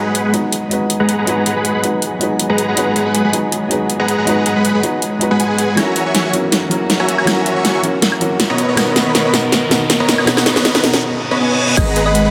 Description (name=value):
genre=future bass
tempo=160 BPM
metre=4/4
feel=half-time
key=G# minor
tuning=A4 = 441 Hz
part: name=felt-muted upright piano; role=accompaniment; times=0.0-11.8 s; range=B2 to B4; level=-21 LUFS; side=equal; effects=sidechain pumping, tape echo
part: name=rich symphonic string section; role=sustained chords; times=0.0-11.0 s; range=D#3 to A#4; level=-27 LUFS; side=equal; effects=none
part: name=dense compressed supersaw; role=riff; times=0.0-12.3 s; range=G#3 to C#6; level=-20 LUFS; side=equal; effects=vintage 12-bit sampler grit, sidechain pumping, low-pass filter, tape echo
part: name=big-room dance drum kit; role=drums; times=0.1-12.2 s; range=crash cymbal, hi-hat, snare drum, woodblock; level=-19 LUFS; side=equal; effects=none
part: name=riser and reverse cymbal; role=sound effects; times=8.3-11.8 s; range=none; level=-27 LUFS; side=equal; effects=none
part: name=thumb-piano-like synth pluck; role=melody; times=11.8-12.3 s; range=D#5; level=-20 LUFS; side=equal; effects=subtle chorus, sidechain pumping
part: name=saturated sub bass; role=bass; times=11.8-12.3 s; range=G#1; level=-20 LUFS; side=equal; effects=sidechain pumping
part: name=electronic kick drum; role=drums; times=11.8-11.9 s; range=none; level=-20 LUFS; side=equal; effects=none
room=wet shimmer reverb, RT60 6.4 s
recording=none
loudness=-15 LUFS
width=mono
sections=0.0-11.8 A section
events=build-up 0.0-11.8; drum fill 5.8-11.0; reverse cymbal 11.0-11.8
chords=0.0 G#m7; 5.8 F#7; 8.6 Bmaj7; 11.8 G#m7